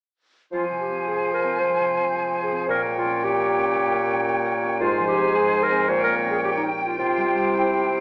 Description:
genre	classical, dramatic, fast romantic movement for symphony orchestra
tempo	111 BPM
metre	4/4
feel	rubato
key	F minor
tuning	A4 = 440 Hz
part	bright flute section	second line	0.5-8.0 s	G5 to Ab5	-29 LUFS	equal	none
part	clear oboe	second line	0.5-8.0 s	C5 to Db5	-30 LUFS	equal	none
part	warm clarinet	second line	0.5-8.0 s	Eb4 to C5	-27 LUFS	equal	none
part	warm bassoon	accompaniment	0.5-8.0 s	Ab2 to F3	-29 LUFS	equal	none
part	concert harp	arpeggios	0.5-8.0 s	F2 to C5	-33 LUFS	equal	none
room	wet concert hall reverb, RT60 2.0 s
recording	small speaker sound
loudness	-22 LUFS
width	mono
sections	0.5-8.0 A section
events	none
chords	0.5 Fm; 2.7 Gdim/Bb; 4.8 Fm/Ab; 5.9 Gdim/Bb; 7.0 C

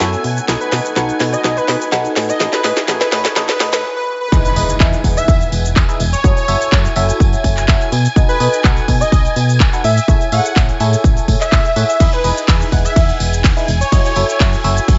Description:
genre	piano house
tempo	125 BPM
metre	4/4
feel	straight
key	E major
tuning	A4 = 440 Hz
part	warm studio violin section	sustained chords	0.0-15.0 s	G#5 to G#6	-28 LUFS	equal	vintage 12-bit sampler grit, sidechain pumping
part	barking FM electric piano	riff	0.0-15.0 s	D#4 to G#5	-24 LUFS	equal	phaser, sidechain pumping, low-pass filter, dub echo
part	solid FM bass	bass	0.0-15.0 s	E1 to B2	-20 LUFS	equal	sidechain pumping
part	house drum kit	drums	0.0-15.0 s	cabasa, handclaps, hi-hat, ride cymbal, snare drum	-23 LUFS	equal	none
part	warbly tape-like pad	texture	0.0-3.8 s	B3 to G#5	-28 LUFS	equal	chorus, built-in reverb, sidechain pumping
part	airy dreamy lead	melody	0.6-14.4 s	B4 to F#5	-22 LUFS	equal	chorus, dub echo
part	electronic kick drum	drums	4.3-15.0 s	none	-16 LUFS	equal	none
part	tambourine	percussion	4.3-15.0 s	none	-32 LUFS	equal	none
part	impact	sound effects	4.3-6.2 s	none	-27 LUFS	equal	none
room	light reverb, digital ambience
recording	high-pass filter, nothing above 7.7 kHz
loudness	-14 LUFS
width	mono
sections	0.0-4.3 A section; 4.3-15.0 B section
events	build-up 0.0-4.3; drum fill 0.0-3.8; filter sweep on FM electric piano 0.0-4.3; break 3.8-4.3; drop 4.3-15.0; impact 4.3-6.2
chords	0.2 B7; 2.2 Amaj7; 4.3 Emaj7; 6.2 F#m7; 7.9 B7; 9.8 Amaj7; 12.0 Emaj7; 13.9 F#m7

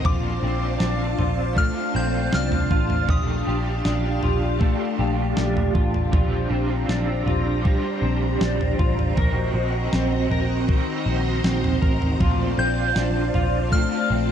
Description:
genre	dream pop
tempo	79 BPM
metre	4/4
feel	straight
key	unclear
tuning	A4 = 442 Hz
part	raw garage guitar	accompaniment	0.0-14.3 s	Bb2 to Bb4	-30 LUFS	right 5 dB	overdrive, tremolo, ensemble chorus
part	phased string machine	sustained chords	0.0-14.3 s	D4 to Bb5	-28 LUFS	equal	ensemble chorus, phaser
part	clean electric guitar	arpeggios	0.0-14.3 s	Eb3 to Bb4	-28 LUFS	left 4 dB	analog chorus, ping-pong delay
part	vintage muted picked electric bass	bass	0.0-14.3 s	A1 to C2	-24 LUFS	equal	none
part	crisp 8-bit digital drum machine	drums	0.0-13.9 s	kick drum, snare drum, toms	-23 LUFS	equal	none
part	soft synth bell	melody	0.1-5.3, 12.6-14.3 s	D6 to G6	-29 LUFS	left 1 dB	chorus, phaser, ping-pong delay
room	little or no reverb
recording	dark, warm production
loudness	-20 LUFS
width	side -9 dB against mid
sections	0.0-14.3 A section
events	none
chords	0.1 Dm7/Bb; 3.1 Ebmaj9#11/Bb; 6.1 Bb69; 9.2 Ebm6/Bb; 12.2 Dm7/Bb

